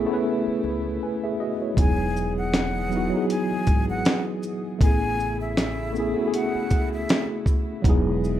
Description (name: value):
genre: lo-fi hip hop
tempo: 79 BPM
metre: 4/4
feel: swing 56% on 16ths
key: unclear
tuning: A4 = 440 Hz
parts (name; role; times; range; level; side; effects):
- tine electric piano; accompaniment; 0.0-8.4 s; F#3 to G#5; -25 LUFS; equal; overdrive, fast stereo tremolo
- warm studio string section; sustained chords; 0.0-8.4 s; C#3 to D#5; -37 LUFS; equal; none
- upright bass; bass; 0.0-8.4 s; E1 to C#2; -30 LUFS; equal; none
- breathy jazz flute; melody; 1.8-7.3 s; E5 to G#5; -31 LUFS; left 2 dB; analog delay
- dusty soul sampler-style drum kit; drums; 1.8-8.4 s; hi-hat, kick drum, shaker, snare drum; -21 LUFS; equal; none
room: moderate studio reverb, RT60 0.6 s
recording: rough home demo mix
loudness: -21 LUFS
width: side -11 dB against mid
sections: 0.0-8.4 A section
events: none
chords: 0.0 Amaj9; 1.8 Emaj7; 4.8 Amaj9; 7.8 Emaj7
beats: 0.25 1.01 | 1.77 2.53 3.29 4.05 | 4.81 5.57 6.33 7.09 | 7.85